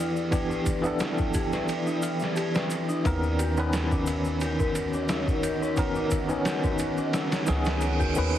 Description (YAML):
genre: trip hop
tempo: 88 BPM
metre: 4/4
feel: swing 54% on 16ths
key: unclear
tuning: A4 = 444 Hz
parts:
  - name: bell-like tine electric piano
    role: accompaniment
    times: 0.0-8.4 s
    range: D#3 to B4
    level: -28 LUFS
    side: equal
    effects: medium stereo tremolo, tape echo
  - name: deep dark ambient pad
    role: sustained chords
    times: 0.0-8.4 s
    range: D#4 to G5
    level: -33 LUFS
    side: equal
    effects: chorus, built-in reverb, vintage 12-bit sampler grit
  - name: dark detuned synth bell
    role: arpeggios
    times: 0.0-8.4 s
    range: C#4 to B4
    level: -33 LUFS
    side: left 3 dB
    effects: chorus, vintage 12-bit sampler grit, tape echo
  - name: upright bass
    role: bass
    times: 0.0-8.4 s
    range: C#2 to E2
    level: -30 LUFS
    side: equal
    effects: none
  - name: tube shaker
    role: percussion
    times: 0.2-8.4 s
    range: none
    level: -42 LUFS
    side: right 1 dB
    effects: none
  - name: trip hop sampler-style drum kit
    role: drums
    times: 0.3-8.2 s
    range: kick drum, ride cymbal, snare drum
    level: -30 LUFS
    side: equal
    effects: none
  - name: reverse cymbal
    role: sound effects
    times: 7.6-8.4 s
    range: none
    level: -35 LUFS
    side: right 6 dB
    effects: none
room: light reverb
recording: heavily compressed radio sound, multiband compression, vinyl crackle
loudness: -24 LUFS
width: side -11 dB against mid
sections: 0.0-8.4 A section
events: reverse cymbal 7.6-8.4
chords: 0.0 Em7; 3.1 Bmaj9/D#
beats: | 0.33 1.01 1.69 2.37 | 3.05 3.73 4.42 5.10 | 5.78 6.46 7.14 7.83